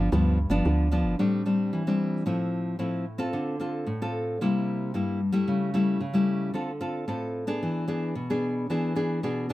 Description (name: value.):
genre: samba and choro.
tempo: 112 BPM.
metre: 4/4.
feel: straight.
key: A minor.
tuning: A4 = 440 Hz.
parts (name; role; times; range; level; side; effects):
nylon-string guitar; accompaniment; 0.0-9.5 s; G2 to A4; -25 LUFS; left 1 dB; none.
woody FM bass; bass; 0.0-1.2 s; G1 to D2; -24 LUFS; right 1 dB; none.
room: light reverb.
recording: none.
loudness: -25 LUFS.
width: side -16 dB against mid.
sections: 0.0-1.2 A section; 1.2-9.5 B section.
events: none.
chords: 0.0 G7; 1.2 Am7; 2.3 Fmaj7/A; 3.3 Dm7; 4.4 C7; 5.5 A7/C#; 6.5 Dm7; 7.6 E7.